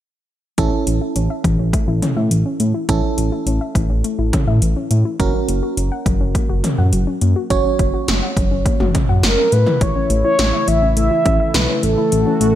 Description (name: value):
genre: synth-pop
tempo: 104 BPM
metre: 4/4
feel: straight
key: unclear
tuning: A4 = 440 Hz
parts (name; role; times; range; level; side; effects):
- FM electric piano; accompaniment; 0.6-9.5 s; C#4 to C#5; -24 LUFS; right 7 dB; chorus
- soft round pluck; arpeggios; 0.6-12.5 s; E3 to F#5; -24 LUFS; left 4 dB; chorus, tape echo
- smooth synth bass; bass; 0.6-12.5 s; F#1 to A2; -18 LUFS; equal; none
- 80s electronic pad drums; drums; 0.6-12.5 s; hi-hat, kick drum, snare drum, toms; -19 LUFS; equal; gated reverb on snare and toms, overdrive
- mellow horn-like synth lead; melody; 9.2-12.6 s; A4 to E5; -17 LUFS; right 1 dB; chorus, tape echo
- brassy analog pad; sustained chords; 9.8-12.6 s; C#3 to F#4; -21 LUFS; left 1 dB; chorus, tremolo
room: light reverb, digital ambience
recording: none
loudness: -15 LUFS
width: side -12 dB against mid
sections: 0.6-9.8 A section; 9.8-12.6 B section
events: none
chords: 0.6 A; 5.2 F#; 9.5 A5; 9.8 A